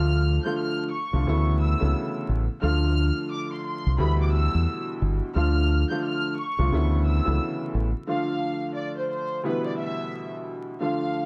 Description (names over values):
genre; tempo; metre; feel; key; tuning
hip hop, boom-bap hip-hop; 88 BPM; 4/4; swing 62% on 16ths; D dorian; A4 = 440 Hz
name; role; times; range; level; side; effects
warm studio violin section; melody; 0.0-11.3 s; B4 to G6; -34 LUFS; equal; high-pass filter, low-pass filter, slapback echo
warm upright piano; accompaniment; 0.0-11.3 s; D2 to F4; -30 LUFS; equal; cassette tape, high-pass filter, low-pass filter
deep dub fingered electric bass; bass; 0.0-7.9 s; G1 to E2; -24 LUFS; equal; none
room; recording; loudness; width
light reverb, small room ambience; dark, warm production, vinyl crackle; -25 LUFS; mono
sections
0.0-8.1 A section; 8.1-11.3 B section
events
none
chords
0.0 Dm; 1.3 Aadd9; 2.6 Dm; 4.0 Em/D; 5.4 Dm; 6.7 Aadd9; 8.1 Dm; 9.4 Em/D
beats
0.58 1.26 1.95 | 2.63 3.31 3.99 4.67 | 5.35 6.04 6.72 7.40 | 8.08 8.76 9.45 10.13 | 10.81